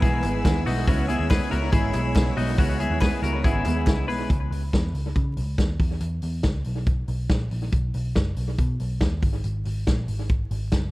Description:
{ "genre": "jangly indie pop", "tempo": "140 BPM", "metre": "4/4", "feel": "straight", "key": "B major", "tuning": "A4 = 441 Hz", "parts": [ { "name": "fingerpicked steel-string acoustic guitar", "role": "accompaniment", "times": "0.0-4.3 s", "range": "C#3 to E4", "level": "-28 LUFS", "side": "right 2 dB", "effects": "analog delay" }, { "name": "string machine, violins", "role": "sustained chords", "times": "0.0-4.3 s", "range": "B4 to E6", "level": "-36 LUFS", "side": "equal", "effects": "ensemble chorus" }, { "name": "twelve-string electric guitar", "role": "arpeggios", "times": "0.0-4.3 s", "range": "C#4 to B4", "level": "-29 LUFS", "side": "left 4 dB", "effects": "analog delay" }, { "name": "vintage muted picked electric bass", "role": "bass", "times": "0.0-10.9 s", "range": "F#1 to C#3", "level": "-26 LUFS", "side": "equal", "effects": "none" }, { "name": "vintage drum kit", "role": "drums", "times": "0.0-10.8 s", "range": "hi-hat, kick drum, snare drum", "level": "-24 LUFS", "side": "equal", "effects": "none" }, { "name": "group handclap", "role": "percussion", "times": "0.2-4.0 s", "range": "none", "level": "barely audible", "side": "none", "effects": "none" } ], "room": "light reverb", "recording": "echo-heavy mix, vinyl crackle", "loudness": "-21 LUFS", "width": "side -19 dB against mid", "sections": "0.0-4.3 A section; 4.3-10.9 B section", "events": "none", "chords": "0.0 E; 0.9 C#m7; 4.3 N.C.; 5.8 E5; 7.7 B; 9.2 N.C." }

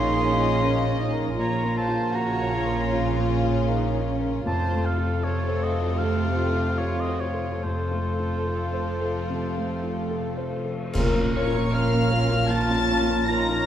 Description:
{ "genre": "cinematic, emotional film score for orchestra", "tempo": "70-82 BPM", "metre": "4/4", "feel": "rubato", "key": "Bb harmonic minor", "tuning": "A4 = 438 Hz", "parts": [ { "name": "rich studio violin section", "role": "melody", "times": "0.0-13.7 s", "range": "F4 to Bb6", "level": "-33 LUFS", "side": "left 3 dB", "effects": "none" }, { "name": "rich studio violin section", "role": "second line", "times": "0.0-13.7 s", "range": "C4 to Bb5", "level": "-32 LUFS", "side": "left 3 dB", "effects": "none" }, { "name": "warm oboe", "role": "second line", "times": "0.0-13.7 s", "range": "Bb4 to C6", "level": "-31 LUFS", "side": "right 1 dB", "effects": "none" }, { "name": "rich studio viola section", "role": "accompaniment", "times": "0.0-13.7 s", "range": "C3 to F4", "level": "-30 LUFS", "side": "right 2 dB", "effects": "none" }, { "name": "warm concert grand piano", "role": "accompaniment", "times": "0.0-13.7 s", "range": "F2 to Db5", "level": "-29 LUFS", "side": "left 2 dB", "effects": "none" }, { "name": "dark studio cello section", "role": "bass", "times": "0.0-13.7 s", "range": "Bb2 to A4", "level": "-30 LUFS", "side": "right 1 dB", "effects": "none" }, { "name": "dark studio double bass section", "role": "bass", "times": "0.0-13.7 s", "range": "F1 to Bb1", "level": "-29 LUFS", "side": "right 3 dB", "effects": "none" }, { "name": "cymbal swell, clash cymbals and concert bass drum", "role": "percussion", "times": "7.6-12.5 s", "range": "none", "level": "-31 LUFS", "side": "equal", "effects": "none" }, { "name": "dark clarinet", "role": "second line", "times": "10.9-13.7 s", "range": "F4", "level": "-33 LUFS", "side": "left 2 dB", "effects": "none" }, { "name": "warm French horn section", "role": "sustained chords", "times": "10.9-13.7 s", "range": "Gb3 to Bb4", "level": "-29 LUFS", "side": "left 5 dB", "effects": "none" }, { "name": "large flute ensemble", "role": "second line", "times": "11.3-13.7 s", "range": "Db5 to Bb5", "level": "-33 LUFS", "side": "left 3 dB", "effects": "none" } ], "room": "moderate concert hall reverb, RT60 2.3 s", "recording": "dark, warm production", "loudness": "-22 LUFS", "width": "side -10 dB against mid", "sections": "0.0-10.9 A section; 10.9-13.7 A section", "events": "band accent 10.9-11.7", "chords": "0.0 Bbm; 4.5 F; 10.9 Bbm" }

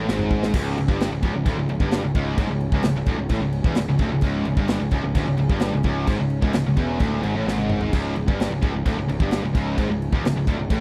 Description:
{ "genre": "heavy metal", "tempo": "130 BPM", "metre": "4/4", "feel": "straight", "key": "unclear", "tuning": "A4 = 440 Hz", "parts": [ { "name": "rich chamber string section", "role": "sustained chords", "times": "0.0-10.8 s", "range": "C#3 to C#4", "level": "-36 LUFS", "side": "equal", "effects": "none" }, { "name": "scooped high-gain guitar", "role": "riff", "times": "0.0-10.8 s", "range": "C#2 to A2", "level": "-31 LUFS", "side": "equal", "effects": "distortion" }, { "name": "tight distorted guitar", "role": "riff", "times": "0.0-10.8 s", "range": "C#2 to A2", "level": "-30 LUFS", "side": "equal", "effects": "distortion" }, { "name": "tight distorted guitar", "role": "riff", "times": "0.0-10.8 s", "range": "C#2 to A2", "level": "-31 LUFS", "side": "equal", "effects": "distortion" }, { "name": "fuzz picked electric bass", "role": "bass", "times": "0.0-10.8 s", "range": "C#1 to A1", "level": "-30 LUFS", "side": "equal", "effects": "overdrive" }, { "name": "modern studio drum kit", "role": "drums", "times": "0.1-10.8 s", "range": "crash cymbal, kick drum, snare drum, toms", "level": "-25 LUFS", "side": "equal", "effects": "none" } ], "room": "small room ambience", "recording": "dry, close 1970s-style studio recording", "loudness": "-22 LUFS", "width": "mono", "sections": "0.5-10.8 A section", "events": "drum fill 0.0-0.5, 7.5-7.9", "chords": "0.0 C#5; 0.5 C#m" }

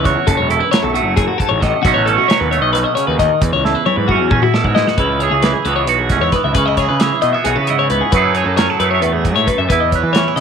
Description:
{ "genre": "math rock and midwest emo", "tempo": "267 BPM (eighths)", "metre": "7/8", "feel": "straight", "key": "unclear", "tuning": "A4 = 439 Hz", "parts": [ { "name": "twangy electric guitar", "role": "accompaniment", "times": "0.0-10.4 s", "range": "E2 to B4", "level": "-17 LUFS", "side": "right 12 dB", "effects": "phaser" }, { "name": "twelve-string electric guitar", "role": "arpeggios", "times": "0.0-10.4 s", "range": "F#4 to E5", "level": "-17 LUFS", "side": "left 10 dB", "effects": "none" }, { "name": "fuzz picked electric bass", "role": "bass", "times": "0.0-10.4 s", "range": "E1 to E3", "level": "-19 LUFS", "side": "equal", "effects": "overdrive" }, { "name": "modern studio drum kit", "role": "drums", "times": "0.1-10.4 s", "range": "hi-hat, kick drum, snare drum, toms", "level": "-19 LUFS", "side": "equal", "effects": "none" } ], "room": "light reverb, small room ambience", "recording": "1960s-style stereo with parts hard left and right", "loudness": "-12 LUFS", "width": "side -7 dB against mid", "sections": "0.0-5.0 A section; 5.0-10.4 B section", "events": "drum fill 3.6-5.0", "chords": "0.3 F#m9; 1.8 B9; 3.4 E69; 5.0 C#m7; 8.1 F#m9; 9.7 E6" }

